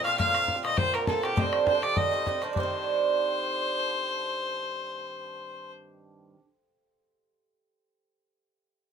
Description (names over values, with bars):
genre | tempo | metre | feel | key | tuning
celtic folk, Celtic reel | 202 BPM | 4/4 | swing 53% on 8ths | C dorian | A4 = 439 Hz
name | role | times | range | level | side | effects
clear fiddle | melody | 0.0-5.7 s | G4 to F5 | -29 LUFS | left 1 dB | none
cimbalom | second line | 0.0-6.3 s | G4 to F5 | -37 LUFS | right 3 dB | none
mellow hollow mid whistle | second line | 0.0-5.7 s | G5 to F6 | -34 LUFS | left 6 dB | none
Irish bouzouki | accompaniment | 0.0-6.4 s | G2 to F4 | -30 LUFS | right 6 dB | none
bodhran | percussion | 0.1-2.7 s | none | -31 LUFS | left 2 dB | none
room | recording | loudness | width
light reverb | minimal, uncompressed stereo recording | -25 LUFS | side -7 dB against mid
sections
0.0-2.6 A section; 2.6-4.9 B section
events
none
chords
0.2 Bbadd9; 1.4 Cmadd9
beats
| 0.18 0.48 0.78 1.07 | 1.37 1.67 1.97 2.27 | 2.56 2.86 3.16 3.46 | 3.75 4.05 4.35 4.65